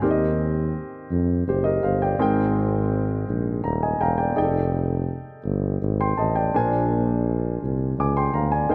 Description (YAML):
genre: slow gospel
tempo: 55 BPM (dotted quarters)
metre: 6/8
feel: straight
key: Eb major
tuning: A4 = 441 Hz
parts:
  - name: warm grand piano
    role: accompaniment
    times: 0.0-8.7 s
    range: Ab2 to D6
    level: -26 LUFS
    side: equal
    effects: none
  - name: breathy tuba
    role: bass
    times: 0.0-8.7 s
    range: Eb1 to F2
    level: -26 LUFS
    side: equal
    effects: none
room: light reverb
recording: none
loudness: -23 LUFS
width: mono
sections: 0.0-8.7 A section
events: grand piano fill 3.3-4.4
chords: 0.0 Eb6; 2.2 Abmaj9; 4.4 F13; 6.5 Bb9